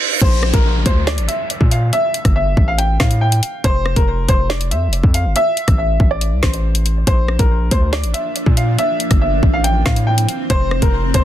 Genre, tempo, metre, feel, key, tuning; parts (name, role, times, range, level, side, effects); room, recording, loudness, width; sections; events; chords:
hip hop, drill; 140 BPM; 4/4; half-time; A phrygian; A4 = 440 Hz
clear upright piano; melody; 0.0-11.2 s; Bb4 to G5; -20 LUFS; equal; low-pass filter, digital delay
reverse cymbal and downlifter; sound effects; 0.0-3.6 s; -24 LUFS; right 4 dB
hard-hitting 808-style bass; bass; 0.2-11.2 s; F1 to Bb2; -17 LUFS; equal
drill drum kit; drums; 0.2-11.2 s; crash cymbal, hi-hat, kick drum, rim click, snare drum; -16 LUFS; equal; soft clipping on snare
granular cloud pad; sustained chords; 7.9-11.2 s; E3 to D4; -24 LUFS; right 1 dB; built-in reverb
little or no reverb; dense, heavily limited modern master; -13 LUFS; side -12 dB against mid
0.2-11.2 A section
break 0.0; reverse cymbal 0.0
0.2 Bb; 1.9 A5; 3.6 F5; 5.4 Am; 7.1 Bb; 8.8 Am; 10.5 F5